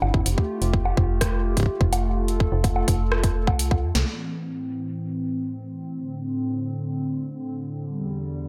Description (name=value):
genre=IDM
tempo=126 BPM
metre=4/4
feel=straight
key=A minor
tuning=A4 = 438 Hz
part: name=hollow soft pad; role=sustained chords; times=0.0-8.5 s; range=E2 to A4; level=-31 LUFS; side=equal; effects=chorus, sidechain pumping
part: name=metallic FM bass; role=bass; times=0.0-4.0 s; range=F1 to F2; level=-26 LUFS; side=equal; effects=none
part: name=booming analog drum machine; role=drums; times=0.0-4.0 s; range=bongos, hi-hat, rim click, snare drum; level=-31 LUFS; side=equal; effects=dub echo
part: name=electronic kick drum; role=drums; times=0.1-3.8 s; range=none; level=-24 LUFS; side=equal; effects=overdrive
room=little or no reverb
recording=none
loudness=-25 LUFS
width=mono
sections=0.0-4.1 A section; 4.1-8.5 B section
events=drum fill 3.7-4.1; band accent 4.0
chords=0.3 Fadd9; 4.1 Am; 7.9 Em7